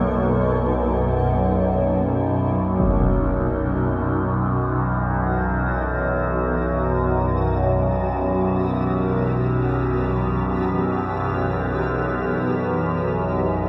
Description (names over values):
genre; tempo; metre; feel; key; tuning
dark ambient drone; free time; none; none; unclear; A4 = 443 Hz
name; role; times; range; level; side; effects
granular cloud pad; sustained chords; 0.0-13.7 s; B2 to G4; -28 LUFS; equal; built-in reverb
overtone-sweeping drone; drone; 0.0-13.7 s; B1 to F#2; -23 LUFS; equal; chorus, built-in reverb
impact; percussion; 2.8-3.0 s; none; -29 LUFS; equal; low-pass filter on sfx
room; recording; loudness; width
wet huge ambient reverb, RT60 8.3 s; in a vast, echoing space; -21 LUFS; mono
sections
0.0-13.7 A section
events
fade-in on impacts and reversed cymbals 0.0-13.7; fade-out on ambient pad 0.0-13.7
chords
0.0 B; 2.8 Em/B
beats
free time